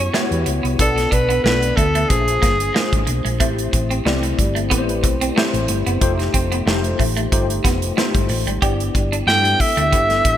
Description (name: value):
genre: polished 1980s jazz-funk pop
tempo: 92 BPM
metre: 4/4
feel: swing 54% on 16ths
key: unclear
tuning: A4 = 441 Hz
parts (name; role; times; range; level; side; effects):
- breathy alto saxophone; melody; 0.0-3.1, 9.3-10.4 s; G#4 to G5; -18 LUFS; equal; none
- tine electric piano; accompaniment; 0.0-10.4 s; A3 to D5; -23 LUFS; left 4 dB; medium stereo tremolo, ensemble chorus
- clean electric guitar; riff; 0.0-10.3 s; G3 to G4; -26 LUFS; right 4 dB; wide subtle chorus
- hollow-body short-scale fingered electric bass; bass; 0.0-10.4 s; F1 to G2; -22 LUFS; equal; none
- modern studio drum kit; drums; 0.1-10.4 s; hi-hat, kick drum, snare drum; -20 LUFS; equal; gated reverb
room: moderate plate reverb, RT60 2.5 s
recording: bright 1980s-style digital production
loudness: -15 LUFS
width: side -11 dB against mid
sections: 0.0-10.4 A section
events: none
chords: 0.0 Em69; 0.8 Bm7b5; 2.1 A#9; 3.4 Am7; 6.0 F9; 8.6 G6